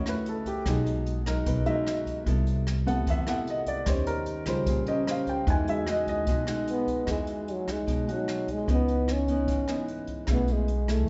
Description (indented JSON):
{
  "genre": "bossa nova",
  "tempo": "150 BPM",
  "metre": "4/4",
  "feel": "straight",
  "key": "E major",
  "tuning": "A4 = 440 Hz",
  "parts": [
    { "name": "nylon-string guitar", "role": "accompaniment", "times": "0.0-11.1 s", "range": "G#2 to B#4", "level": "-34 LUFS", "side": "equal", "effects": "none" },
    { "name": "warm baby grand piano", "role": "accompaniment", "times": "0.0-11.1 s", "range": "C3 to G#5", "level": "-34 LUFS", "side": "equal", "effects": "none" },
    { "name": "upright bass", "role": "bass", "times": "0.0-11.1 s", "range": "G#1 to E2", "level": "-32 LUFS", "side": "equal", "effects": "none" },
    { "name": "jazz brush drum kit", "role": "drums", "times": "0.1-11.0 s", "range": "hi-hat, kick drum, rim click", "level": "-35 LUFS", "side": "equal", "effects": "none" },
    { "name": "breathy trombone", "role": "melody", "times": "6.7-11.1 s", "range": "F#3 to C#4", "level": "-32 LUFS", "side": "equal", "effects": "none" }
  ],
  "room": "moderate recital hall reverb, RT60 1.8 s",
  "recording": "recorded in a church or concert hall, nothing above 7.9 kHz",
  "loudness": "-28 LUFS",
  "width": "mono",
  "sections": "0.0-7.1 A section; 7.1-11.1 B section",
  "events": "grand piano solo 0.0-7.1",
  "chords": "0.0 A6/C#; 0.7 B6; 2.3 Amadd9/C; 3.9 D#13; 5.5 Emaj9; 8.7 C#m9; 10.3 B13sus4"
}